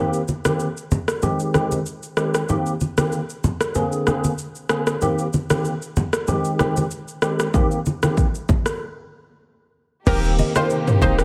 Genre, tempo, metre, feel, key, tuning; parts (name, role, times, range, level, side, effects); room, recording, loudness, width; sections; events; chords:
afrobeats; 95 BPM; 4/4; swing 55% on 16ths; Eb major; A4 = 443 Hz
tine electric piano; accompaniment; 0.0-11.2 s; D3 to Ab4; -25 LUFS; equal; ensemble chorus
deep house drum kit; drums; 0.1-11.2 s; crash cymbal, hi-hat, kick drum, rim click, shaker, toms; -25 LUFS; equal; overdrive, vintage 12-bit sampler grit
congas; percussion; 0.3-11.2 s; -26 LUFS; equal
analog pluck; melody; 10.1-11.2 s; Bb4 to C5; -28 LUFS; equal; chorus
warm horn section; second line; 10.1-11.2 s; C3 to G4; -32 LUFS; equal
warm studio string section; sustained chords; 10.1-11.2 s; C3 to G4; -34 LUFS; equal
kora; riff; 10.1-11.2 s; Bb4 to Eb5; -32 LUFS; equal
warm 808-style bass; bass; 10.1-11.2 s; Eb1; -22 LUFS; equal
light reverb; -21 LUFS; mono
0.0-10.1 A section; 10.1-11.2 B section
break 8.8-10.1
0.0 Eb6; 1.2 Abmaj7; 2.5 Eb6; 3.8 Bb9; 5.0 Eb6; 6.3 Abmaj7; 7.5 Eb6; 8.8 N.C.; 10.1 Eb6